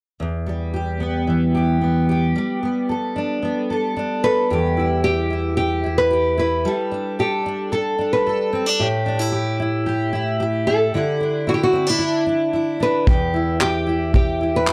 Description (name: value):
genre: acoustic pop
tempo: 112 BPM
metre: 4/4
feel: straight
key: unclear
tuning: A4 = 440 Hz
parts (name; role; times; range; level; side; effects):
- fingerpicked steel-string acoustic guitar; accompaniment; 0.2-14.7 s; E2 to A4; -22 LUFS; equal; double-tracked
- nylon-string guitar; melody; 4.2-14.7 s; E4 to B4; -23 LUFS; equal; none
- soft brush drum kit; drums; 13.1-14.7 s; handclaps, kick drum; -20 LUFS; equal; none
room: moderate studio reverb, RT60 0.6 s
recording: dark, warm production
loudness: -20 LUFS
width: mono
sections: 0.2-4.5 A section; 4.5-14.7 B section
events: none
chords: 0.2 Em; 2.3 Gadd9; 4.5 Em; 6.6 Gadd9; 8.8 A5; 10.9 Dsus2; 13.1 Em